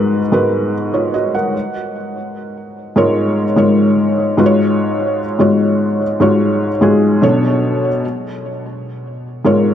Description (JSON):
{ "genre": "R&B", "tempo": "74 BPM", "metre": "4/4", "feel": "straight", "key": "G# dorian", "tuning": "A4 = 440 Hz", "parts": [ { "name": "felt-muted upright piano", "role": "solo", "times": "0.0-9.7 s", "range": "G#2 to F#5", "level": "-13 LUFS", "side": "equal", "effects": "tape echo" } ], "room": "light reverb, small room ambience", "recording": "dark, warm production", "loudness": "-12 LUFS", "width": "side -10 dB against mid", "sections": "0.0-9.7 A section", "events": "none", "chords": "0.0 G#m7; 1.5 G#13sus4; 4.4 C#add11/G#; 7.2 Bm7; 8.0 A#m7/G#" }